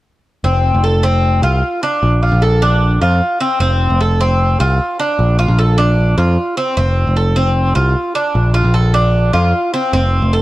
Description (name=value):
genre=latin, Cuban son and guajira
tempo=152 BPM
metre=4/4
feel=straight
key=F major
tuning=A4 = 441 Hz
part: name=Cuban tres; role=arpeggios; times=0.4-10.4 s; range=C4 to A4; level=-16 LUFS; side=equal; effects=none
part: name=modern bright picked electric bass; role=bass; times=0.4-10.4 s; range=F1 to F2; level=-13 LUFS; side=equal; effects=none
room=light reverb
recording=worn, warbling old tape, cassette tape, warbly pitch drift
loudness=-12 LUFS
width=side -16 dB against mid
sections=0.4-10.4 A section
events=none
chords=0.4 F; 2.0 Bbmaj7; 3.6 F; 5.2 Bbmaj7; 6.8 F; 8.3 Bbmaj7